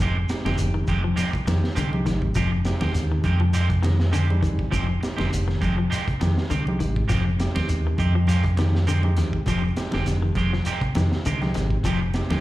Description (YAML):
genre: afrobeat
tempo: 101 BPM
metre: 4/4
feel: swing 55% on 16ths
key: F dorian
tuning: A4 = 443 Hz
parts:
  - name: clean electric guitar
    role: arpeggios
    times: 0.0-12.4 s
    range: D3 to F3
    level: -30 LUFS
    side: left 5 dB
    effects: harmonic tremolo, slapback echo
  - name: electric guitar at the edge of break-up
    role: stabs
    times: 0.0-12.4 s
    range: Eb3 to G4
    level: -31 LUFS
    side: right 5 dB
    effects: slapback echo
  - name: fingered electric bass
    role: bass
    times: 0.0-12.4 s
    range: F1 to F2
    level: -22 LUFS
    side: equal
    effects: none
  - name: crunchy breakbeat drum kit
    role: drums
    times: 0.0-12.4 s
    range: hi-hat, kick drum, snare drum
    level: -29 LUFS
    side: equal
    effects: none
  - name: congas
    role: percussion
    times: 0.0-12.4 s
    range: none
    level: -30 LUFS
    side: equal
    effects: none
  - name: shekere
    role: percussion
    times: 0.0-12.3 s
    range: none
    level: -32 LUFS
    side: equal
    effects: none
  - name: barky tine electric piano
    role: accompaniment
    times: 0.3-12.4 s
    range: G3 to Ab5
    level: -33 LUFS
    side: right 3 dB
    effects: overdrive, slapback echo
room: studio reverb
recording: live gig heard through the venue's PA, club reverb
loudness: -20 LUFS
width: side -16 dB against mid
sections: 0.0-12.4 A section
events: tine electric piano fill 3.5-4.7, 7.7-9.5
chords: 0.0 Fm9